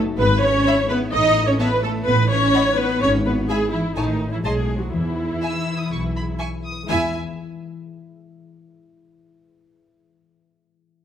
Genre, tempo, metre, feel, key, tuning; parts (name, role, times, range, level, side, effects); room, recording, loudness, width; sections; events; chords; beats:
cinematic, playful, whimsical film cue; 125 BPM; 4/4; straight; E major; A4 = 443 Hz
warm studio viola section; accompaniment; 0.0-7.2 s; D#4 to D#5; -21 LUFS; equal
concert harp; arpeggios; 0.0-8.8 s; F#2 to E5; -28 LUFS; left 6 dB
rich studio cello section; bass; 0.0-7.2 s; D#3 to D#4; -24 LUFS; right 1 dB
rich studio double bass section; bass; 0.2-7.2 s; G#1 to E2; -25 LUFS; right 2 dB
rich studio violin section; melody; 0.7-7.2 s; G#5 to E6; -33 LUFS; left 2 dB
rich studio violin section; second line; 0.7-7.2 s; C#5 to A5; -28 LUFS; equal
moderate recital hall reverb, RT60 1.4 s; -18 LUFS; side -9 dB against mid
0.0-6.9 A section; 6.9-8.8 B section
0.2 E/G#; 1.1 A; 2.1 B7/A; 3.0 E/G#; 4.0 Amaj7; 4.4 B7b9; 4.9 E
0.18 0.66 | 1.12 1.59 2.06 2.54 | 3.01 3.48 3.96 4.43 | 4.92 5.41 5.90 6.39 | 6.88 7.37 7.85 8.34